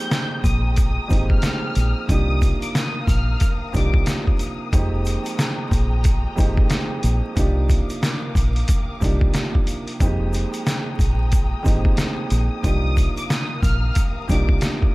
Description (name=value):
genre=hip hop, boom-bap hip-hop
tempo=91 BPM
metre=4/4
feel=swing 62% on 16ths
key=F minor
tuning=A4 = 440 Hz
part: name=warm studio violin section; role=melody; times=0.0-3.9, 12.6-14.5 s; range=D6 to G6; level=-30 LUFS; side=left 1 dB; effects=high-pass filter, low-pass filter, tape echo
part: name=dark upright piano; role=accompaniment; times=0.0-14.9 s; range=F2 to G4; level=-27 LUFS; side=right 2 dB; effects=cassette tape, high-pass filter, low-pass filter
part: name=warm studio string section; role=sustained chords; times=0.0-14.9 s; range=Ab3 to Eb6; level=-34 LUFS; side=left 3 dB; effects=high-pass filter, low-pass filter
part: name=trip hop sampler-style drum kit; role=drums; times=0.1-14.9 s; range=hi-hat, kick drum, snare drum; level=-20 LUFS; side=equal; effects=none
part: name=egg shaker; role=percussion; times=0.1-14.8 s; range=none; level=-42 LUFS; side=left 4 dB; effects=none
part: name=deep dub fingered electric bass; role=bass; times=0.4-14.6 s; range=F1 to C2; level=-21 LUFS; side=equal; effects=none
room=little or no reverb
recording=vinyl crackle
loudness=-18 LUFS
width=side -21 dB against mid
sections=0.0-14.9 A section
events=none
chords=0.0 Fm11; 2.1 Cm11; 4.7 Fm11; 7.4 Cm11; 10.0 Fm11; 12.6 Cm11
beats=0.11 0.77 1.43 | 2.09 2.75 3.41 4.07 | 4.73 5.39 6.05 6.71 | 7.37 8.03 8.69 9.35 | 10.00 10.66 11.32 11.98 | 12.64 13.30 13.96 14.62